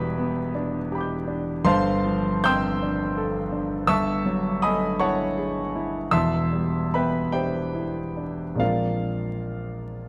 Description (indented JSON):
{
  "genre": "classical, impressionist solo piano",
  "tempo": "43-57 BPM (dotted quarters)",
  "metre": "6/8",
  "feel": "rubato",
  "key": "unclear",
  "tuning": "A4 = 440 Hz",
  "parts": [
    { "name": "clear grand piano", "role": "solo", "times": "0.0-10.1 s", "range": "E1 to G6", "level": "-25 LUFS", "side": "equal", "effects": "none" }
  ],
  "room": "moderate recital hall reverb, RT60 1.6 s",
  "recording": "close, detailed microphones, vinyl crackle",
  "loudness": "-25 LUFS",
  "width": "mono",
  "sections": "0.0-10.1 A section",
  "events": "none",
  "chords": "0.0 Em7; 1.7 G11; 3.9 F#m9/G; 6.1 Em7; 8.6 Bb9"
}